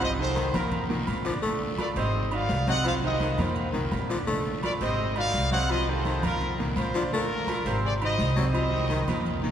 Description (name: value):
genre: latin, salsa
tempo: 169 BPM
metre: 4/4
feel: straight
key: Bb major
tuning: A4 = 440 Hz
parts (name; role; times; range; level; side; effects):
- bright trumpet section; melody; 0.0-9.4 s; F4 to Gb5; -30 LUFS; equal; none
- breathy baritone saxophone; second line; 0.0-9.5 s; Eb3 to A3; -32 LUFS; left 2 dB; none
- bright grand piano; accompaniment; 0.0-9.5 s; Bb2 to D5; -32 LUFS; right 2 dB; none
- upright bass; bass; 0.0-9.5 s; Ab1 to F2; -30 LUFS; equal; none
- agogo bells and timbales; percussion; 0.0-9.4 s; none; -36 LUFS; right 5 dB; none
- congas; percussion; 0.0-9.5 s; none; -36 LUFS; left 1 dB; none
- guiro; percussion; 0.0-9.5 s; none; -44 LUFS; left 4 dB; none
room: wet cathedral reverb, RT60 4.3 s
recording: recorded in a church or concert hall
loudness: -24 LUFS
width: side -9 dB against mid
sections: 0.0-9.5 A section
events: none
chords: 0.0 Cm7; 0.7 F7sus4; 1.4 Bbmaj7; 2.1 Ab7; 2.8 Cm7; 3.6 F7sus4; 4.3 Bbmaj7; 5.0 Ab7; 5.7 Cm7; 6.4 F7sus4; 7.1 Bbmaj7; 7.8 Ab7; 8.5 Cm7